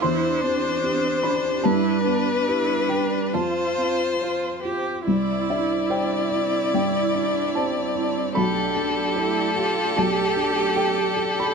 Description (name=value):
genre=neoclassical piano and strings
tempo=69-76 BPM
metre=4/4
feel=rubato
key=C major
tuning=A4 = 439 Hz
part: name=rich violin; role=melody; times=0.0-11.5 s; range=A4 to D5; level=-24 LUFS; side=left 5 dB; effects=none
part: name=rich cello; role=second line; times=0.0-11.5 s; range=C4 to G4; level=-28 LUFS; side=right 9 dB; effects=none
part: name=felt-muted upright piano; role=accompaniment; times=0.0-11.5 s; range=B1 to C6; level=-25 LUFS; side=equal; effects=none
part: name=rich viola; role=accompaniment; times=0.0-11.5 s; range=D4 to G4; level=-29 LUFS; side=right 4 dB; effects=none
part: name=dark studio string section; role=sustained chords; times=0.0-11.5 s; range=A3 to D5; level=-34 LUFS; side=equal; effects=none
room=moderate large studio reverb, RT60 0.9 s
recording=none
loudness=-20 LUFS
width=side -5 dB against mid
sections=0.0-11.5 A section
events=none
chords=0.0 Cadd9/E; 1.6 Gadd9; 3.3 F; 5.1 Cadd9; 8.4 Gadd9/B